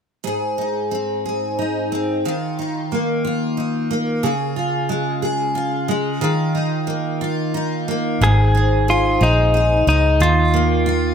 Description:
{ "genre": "pop", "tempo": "60 BPM (dotted quarters)", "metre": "6/8", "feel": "straight", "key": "Ab major", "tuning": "A4 = 442 Hz", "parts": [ { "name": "picked steel-string acoustic guitar", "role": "accompaniment", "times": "0.2-11.1 s", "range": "Ab2 to Ab4", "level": "-19 LUFS", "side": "equal", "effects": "double-tracked left and right" }, { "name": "direct-recorded clean electric guitar", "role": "melody", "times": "8.2-11.1 s", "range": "Eb4 to Ab4", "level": "-17 LUFS", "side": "equal", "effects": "spring reverb, tape echo" }, { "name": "vintage muted fingered electric bass", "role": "bass", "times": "8.2-11.1 s", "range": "Ab1 to Eb2", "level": "-18 LUFS", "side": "equal", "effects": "none" } ], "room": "light reverb", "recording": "none", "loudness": "-17 LUFS", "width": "side -7 dB against mid", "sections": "0.2-8.2 A section; 8.2-11.1 B section", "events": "none", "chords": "0.2 Ab; 2.2 Ebsus2; 4.2 Db; 6.2 Ebsus2; 8.2 Ab; 10.2 Ebsus2" }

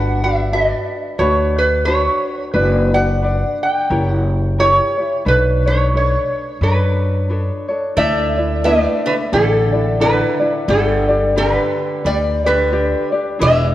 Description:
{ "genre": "Hawaiian", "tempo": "88 BPM", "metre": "4/4", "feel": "swing 60% on 8ths", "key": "B minor", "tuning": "A4 = 445 Hz", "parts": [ { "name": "metal-body resonator slide guitar", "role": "melody", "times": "0.0-13.7 s", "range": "A4 to G5", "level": "-18 LUFS", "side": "right 1 dB", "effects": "none" }, { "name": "tenor ukulele", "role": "accompaniment", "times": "0.0-13.7 s", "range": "D4 to D5", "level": "-21 LUFS", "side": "left 2 dB", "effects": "none" }, { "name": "upright bass", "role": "bass", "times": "0.0-13.7 s", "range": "E1 to F#2", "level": "-18 LUFS", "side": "equal", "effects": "none" }, { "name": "picked acoustic archtop guitar", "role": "second line", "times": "8.0-13.7 s", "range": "D3 to A3", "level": "-22 LUFS", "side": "right 2 dB", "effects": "none" } ], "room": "moderate concert hall reverb, RT60 2.1 s", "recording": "worn, warbling old tape, cassette tape, warbly pitch drift", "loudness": "-14 LUFS", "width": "side -14 dB against mid", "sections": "0.0-8.0 A section; 8.0-13.7 B section", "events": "none", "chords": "0.0 Gmaj9; 2.5 Bm/F#; 3.9 F#7b9; 5.3 Bm9; 8.0 Dsus2; 10.7 G" }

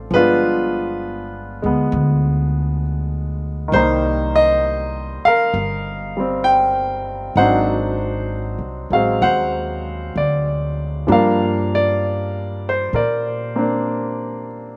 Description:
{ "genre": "jazz ballad", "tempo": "65 BPM", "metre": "4/4", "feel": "swing 68% on 8ths", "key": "unclear", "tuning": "A4 = 439 Hz", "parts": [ { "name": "clear concert grand piano", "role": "accompaniment", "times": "0.0-14.8 s", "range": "Eb3 to G5", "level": "-20 LUFS", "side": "equal", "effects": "slapback echo" }, { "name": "upright bass", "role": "bass", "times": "0.0-14.7 s", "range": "G1 to Bb2", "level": "-26 LUFS", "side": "equal", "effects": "none" } ], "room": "little or no reverb", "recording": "recorded outdoors, with no room sound, nothing above 10.8 kHz", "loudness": "-19 LUFS", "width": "mono", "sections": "0.0-14.8 A section", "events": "none", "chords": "0.1 G7b9; 3.7 Cm7; 7.4 Ab7#11; 11.1 Gm7" }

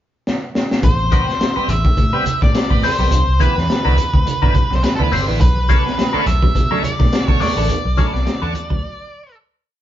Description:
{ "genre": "funk", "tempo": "105 BPM", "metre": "4/4", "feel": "swing 56% on 16ths", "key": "unclear", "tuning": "A4 = 440 Hz", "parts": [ { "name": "crunchy breakbeat drum kit", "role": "drums", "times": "0.3-8.8 s", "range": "hi-hat, kick drum, snare drum", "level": "-17 LUFS", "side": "equal", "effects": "none" }, { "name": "octave-fuzz lead guitar", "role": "melody", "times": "0.8-9.4 s", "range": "A4 to E5", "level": "-22 LUFS", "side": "equal", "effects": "distortion" }, { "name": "bright tonewheel organ", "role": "stabs", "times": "0.8-8.8 s", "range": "A2 to C#4", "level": "-25 LUFS", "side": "right 3 dB", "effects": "overdrive, slow rotary speaker" }, { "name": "vintage muted fingered electric bass", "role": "bass", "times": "0.8-8.8 s", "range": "G1 to B2", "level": "-20 LUFS", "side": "equal", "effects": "none" }, { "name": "congas", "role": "percussion", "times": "0.8-8.7 s", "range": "none", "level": "-26 LUFS", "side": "right 4 dB", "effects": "none" }, { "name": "clean electric guitar", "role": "accompaniment", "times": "1.1-8.7 s", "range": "C4 to C#5", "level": "-25 LUFS", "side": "left 4 dB", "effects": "wah" }, { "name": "electric guitar at the edge of break-up", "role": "riff", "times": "5.6-8.8 s", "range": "F#3 to B3", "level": "-28 LUFS", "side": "right 4 dB", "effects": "none" } ], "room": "moderate stone room reverb, RT60 1.1 s", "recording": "band playing live in one room, nothing above 7.5 kHz", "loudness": "-14 LUFS", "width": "side -12 dB against mid", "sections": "0.0-0.8 pickup bar; 0.8-9.8 bridge", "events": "drum fill 0.3-0.8; fade-out 7.7-9.8; break 8.8-9.8", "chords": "0.0 N.C.; 0.8 Am9; 3.1 Cmaj7; 5.4 Bm7" }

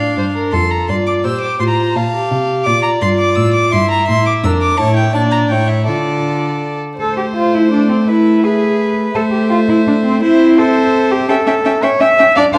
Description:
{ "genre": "quick classical-period movement for string quartet", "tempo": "168 BPM", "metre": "3/4", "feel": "rubato", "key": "D minor, A minor from 7.0 s", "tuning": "A4 = 438 Hz", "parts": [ { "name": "rich violin", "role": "melody", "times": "0.0-12.6 s", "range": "C5 to E6", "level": "-22 LUFS", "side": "equal", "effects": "none" }, { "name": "warm violin", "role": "second line", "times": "0.0-12.6 s", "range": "A4 to F5", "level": "-22 LUFS", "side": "equal", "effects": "none" }, { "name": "warm viola", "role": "accompaniment", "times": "0.0-12.6 s", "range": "A3 to G4", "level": "-20 LUFS", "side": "equal", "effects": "none" }, { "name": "rich cello", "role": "bass", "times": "0.0-12.6 s", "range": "F2 to E5", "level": "-17 LUFS", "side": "equal", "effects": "none" } ], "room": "wet recital hall reverb, RT60 1.4 s", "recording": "vinyl crackle", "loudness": "-14 LUFS", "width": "mono", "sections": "0.0-7.0 A section; 7.0-12.6 B section", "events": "none", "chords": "0.0 Dm; 1.6 F/A; 2.7 Bb; 3.7 Em7b5/G; 4.8 A7; 5.1 Bb; 5.5 A7; 5.9 Dm; 7.0 Am; 8.1 E/A; 9.2 Am; 10.2 Am/C; 11.3 A7/C#" }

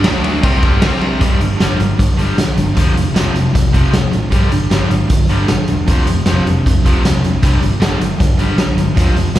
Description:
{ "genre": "hard rock", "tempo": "155 BPM", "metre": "4/4", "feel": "straight", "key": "unclear", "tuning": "A4 = 441 Hz", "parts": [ { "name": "crunchy overdriven guitar", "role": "riff", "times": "0.0-9.4 s", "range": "F2 to D4", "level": "-19 LUFS", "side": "left 4 dB", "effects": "slapback echo" }, { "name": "overdriven electric guitar", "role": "riff", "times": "0.0-9.4 s", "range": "F2 to D4", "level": "-21 LUFS", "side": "right 8 dB", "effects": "slapback echo" }, { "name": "picked electric bass", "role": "bass", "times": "0.0-9.4 s", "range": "E1 to D2", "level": "-18 LUFS", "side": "equal", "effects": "none" }, { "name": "raw garage drum kit", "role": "drums", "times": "0.0-9.4 s", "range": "hi-hat, kick drum, ride cymbal, snare drum", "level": "-14 LUFS", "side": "equal", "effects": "none" } ], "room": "light reverb", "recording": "live gig heard through the venue's PA, recital hall reverb", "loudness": "-11 LUFS", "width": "side -13 dB against mid", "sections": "0.0-1.2 A section; 1.2-9.4 B section", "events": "none", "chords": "0.1 D5; 0.4 G5; 0.8 C5; 1.2 G5; 2.8 F5; 4.3 G5; 5.9 F5; 7.4 G5" }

